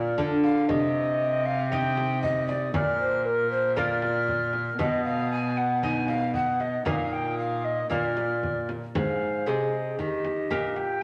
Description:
classical, renaissance-style consort dance; 116 BPM; 4/4; straight; A4 = 441 Hz
silver concert flute; melody; 0.0-11.0 s; Eb5 to F6; -36 LUFS; equal
mellow hollow tenor recorder; second line; 0.0-11.0 s; G4 to Ab5; -31 LUFS; equal
lute; accompaniment; 0.0-11.0 s; Ab2 to Eb5; -32 LUFS; equal
warm cello; bass; 0.0-11.0 s; Ab2 to Eb3; -34 LUFS; equal
frame drum; percussion; 0.2-11.0 s; -37 LUFS; equal
wet stone room reverb, RT60 1.2 s; -26 LUFS; mono
0.0-9.0 A section; 9.0-11.0 B section
0.0 Bb; 0.7 Cm; 2.7 Bb; 4.8 B; 6.9 Bbsus4; 7.9 Bb; 9.0 Ab; 10.0 Eb

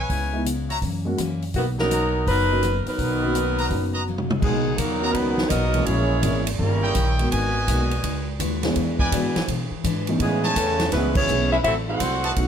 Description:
jazz, big band swing; 166 BPM; 4/4; swing 65% on 8ths; B major; A4 = 441 Hz
bright trumpet section; stabs; 0.0-12.3 s; B3 to A#5; -27 LUFS; equal
upright bass; bass; 0.0-12.5 s; F#1 to B2; -26 LUFS; equal
picked steel-string acoustic guitar; accompaniment; 0.1-12.5 s; F#2 to B4; -32 LUFS; left 6 dB
swinging big-band drum kit; drums; 0.1-12.5 s; crash cymbal, hi-hat, kick drum, ride cymbal, rim click, snare drum, toms; -28 LUFS; equal
dark baby grand piano; accompaniment; 0.3-12.5 s; D#3 to A#4; -27 LUFS; equal
dark saxophone section; melody; 1.6-7.2, 10.2-12.5 s; D#3 to F#5; -24 LUFS; equal; plate reverb
bright trombone section; second line; 2.9-7.1, 10.2-12.5 s; B2 to A#4; -29 LUFS; right 4 dB
moderate club reverb, RT60 0.6 s; -20 LUFS; side -8 dB against mid
0.0-4.4 A section; 4.4-12.5 B section
drum fill 4.1-4.4; band accent 11.1
0.1 C#m7; 0.8 F#7; 1.5 Bmaj7; 5.9 A#m7b5; 6.6 D#7b9; 7.3 G#m7; 8.8 E7; 10.2 Amaj9; 11.6 F#m7b5

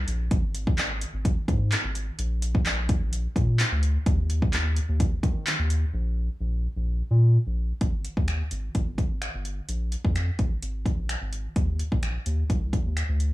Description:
dance-pop; 128 BPM; 4/4; straight; A4 = 440 Hz
round analog bass; bass; 0.0-13.3 s; G1 to Eb3; -26 LUFS; equal; sidechain pumping
pop drum kit; drums; 0.1-13.3 s; finger snaps, handclaps, hi-hat, kick drum; -26 LUFS; equal; overdrive, soft clipping on snare
little or no reverb; blown-out, overdriven recording, overdrive; -23 LUFS; side -17 dB against mid
0.0-7.8 A section; 7.8-13.3 B section
silent gap 5.9-7.8

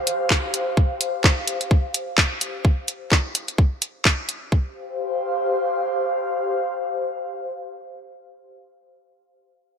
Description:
minimal techno; 128 BPM; 4/4; swing 57% on 16ths; A4 = 440 Hz
airy breathy pad; texture; 0.0-8.8 s; G4 to F5; -25 LUFS; left 1 dB; chorus, sidechain pumping
garage drum kit; drums; 0.1-4.4 s; handclaps, hi-hat; -21 LUFS; equal
electronic kick drum; drums; 0.3-4.6 s; -18 LUFS; equal
moderate plate reverb, RT60 2.2 s; bright 1980s-style digital production; -20 LUFS; side -7 dB against mid
0.0-4.5 A section; 4.5-8.3 B section
0.0 G5; 4.5 G7sus4

